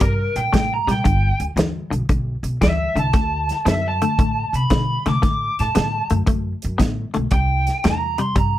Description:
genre	electric blues shuffle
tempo	115 BPM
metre	4/4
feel	swing 67% on 8ths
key	unclear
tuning	A4 = 440 Hz
part	lead guitar through a small cranked amp	melody	0.0-8.6 s	Bb4 to D6	-22 LUFS	right 1 dB	overdrive
part	clean electric guitar	riff	0.0-8.6 s	G2 to B3	-24 LUFS	left 3 dB	lush chorus
part	upright bass	bass	0.0-8.6 s	G1 to C3	-22 LUFS	equal	none
part	natural country drum kit	drums	0.0-8.5 s	hi-hat, kick drum, snare drum	-21 LUFS	equal	none
room	light reverb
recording	none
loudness	-17 LUFS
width	side -13 dB against mid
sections	0.0-8.6 A section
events	none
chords	0.0 C7(no3); 1.1 G; 3.1 D; 7.3 C7

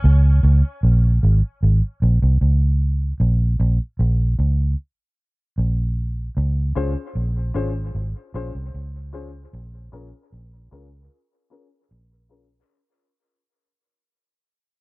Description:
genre	dub reggae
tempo	76 BPM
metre	4/4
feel	straight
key	Db major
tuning	A4 = 445 Hz
part	vintage muted fingered electric bass	bass	0.0-12.6 s	Ab1 to Db2	-17 LUFS	equal	none
part	dark upright piano	stabs	6.8-12.4 s	Db4 to C5	-31 LUFS	left 6 dB	low-pass filter, dub echo
room	small room ambience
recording	none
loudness	-17 LUFS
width	side -26 dB against mid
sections	0.0-12.7 A section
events	break 0.0-6.4; fade-out 0.0-12.7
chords	0.0 Db5; 3.2 N.C.; 6.4 Dbmaj7; 9.5 Bbm7

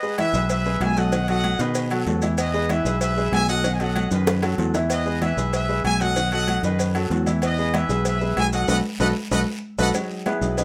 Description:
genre	latin, salsa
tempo	190 BPM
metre	4/4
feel	straight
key	unclear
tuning	A4 = 438 Hz
part	bright trumpet section	melody	0.0-9.9 s	G#4 to G#5	-28 LUFS	equal	none
part	clear upright piano	accompaniment	0.0-10.6 s	D#3 to E5	-29 LUFS	equal	none
part	congas	percussion	0.0-10.6 s	none	-32 LUFS	equal	none
part	maracas	percussion	0.0-10.6 s	none	-39 LUFS	equal	none
part	agogo bells and timbales	percussion	0.2-10.6 s	none	-35 LUFS	equal	none
part	cowbell and bongos	percussion	0.2-10.6 s	none	-32 LUFS	equal	none
part	guiro	percussion	0.2-10.6 s	none	-43 LUFS	equal	none
part	fingered electric bass	bass	0.3-10.6 s	B1 to B2	-26 LUFS	equal	none
room	moderate studio reverb, RT60 0.5 s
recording	none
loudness	-22 LUFS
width	mono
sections	0.0-9.9 A section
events	drum fill 4.3-4.9, 9.2-9.9; band accent 8.7-9.9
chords	0.0 B7; 9.9 Emaj7

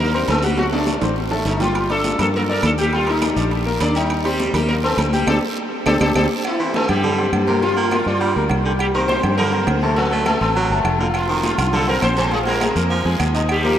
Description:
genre	latin, salsa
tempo	204 BPM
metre	4/4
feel	straight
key	unclear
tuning	A4 = 439 Hz
part	sitar	melody	0.0-13.8 s	G3 to D5	-21 LUFS	equal	none
part	clear concert grand piano	accompaniment	0.0-13.8 s	F3 to G6	-24 LUFS	left 3 dB	none
part	fingered electric bass	bass	0.0-13.8 s	F1 to G2	-22 LUFS	equal	none
part	congas	percussion	0.1-13.8 s	none	-27 LUFS	left 2 dB	none
part	guiro	percussion	0.3-6.2, 11.1-13.8 s	none	-33 LUFS	right 5 dB	none
part	timbales and agogo bells	percussion	0.3-13.6 s	none	-28 LUFS	right 4 dB	none
part	claves	percussion	1.8-13.6 s	none	-34 LUFS	right 2 dB	none
part	clear baritone saxophone	second line	6.6-13.8 s	C3 to Bb3	-23 LUFS	right 3 dB	none
room	wet huge ambient reverb, RT60 7.7 s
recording	in a vast, echoing space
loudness	-16 LUFS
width	side -10 dB against mid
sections	0.0-6.4 A section; 6.4-13.8 B section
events	drum fill 0.6-1.7, 5.9-6.4; band accent 5.3-6.4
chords	0.0 Cm9; 0.6 D7; 1.7 Gm9; 2.9 Ebmaj7; 4.1 Cm9/Eb; 5.3 D7sus4; 6.4 C7; 7.6 Gm7; 8.8 C7(no3); 10.0 D7; 11.1 F; 12.3 Bb5

